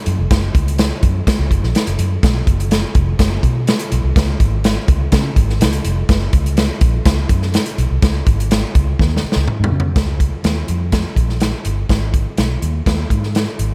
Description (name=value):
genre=uptempo 1960s-style soul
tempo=124 BPM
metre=4/4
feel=straight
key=Db mixolydian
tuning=A4 = 441 Hz
part: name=vintage muted fingered electric bass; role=bass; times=0.1-13.7 s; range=F1 to Db3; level=-20 LUFS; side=equal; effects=none
part: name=swinging big-band drum kit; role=drums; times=0.1-13.7 s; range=hi-hat, kick drum, snare drum, toms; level=-18 LUFS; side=equal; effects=none
room=light reverb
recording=none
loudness=-16 LUFS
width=mono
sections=0.0-10.0 A section; 10.0-13.7 B section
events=drum fill 9.0-10.0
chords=none